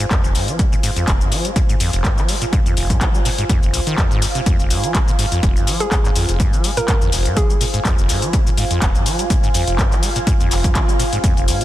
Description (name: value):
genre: acid house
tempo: 124 BPM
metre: 4/4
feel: swing 54% on 16ths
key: F minor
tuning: A4 = 439 Hz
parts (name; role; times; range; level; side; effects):
- acid bass, saw; riff; 0.0-11.6 s; F1 to Ab3; -22 LUFS; equal; tape echo
- booming analog drum machine; drums; 0.0-11.6 s; cabasa, handclaps, hi-hat; -23 LUFS; left 2 dB; small room ambience
- granular cloud pad; texture; 0.0-11.6 s; F4 to Ab5; -25 LUFS; right 1 dB; built-in reverb, sidechain pumping
- electronic kick drum; drums; 0.1-11.3 s; none; -17 LUFS; equal; overdrive, small room ambience
- hollow square pluck; melody; 5.8-8.0 s; Ab4 to Bb4; -25 LUFS; right 1 dB; chorus, tape echo
room: light reverb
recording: dense, heavily limited modern master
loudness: -14 LUFS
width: side -14 dB against mid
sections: 0.0-11.6 A section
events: none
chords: 0.0 Fm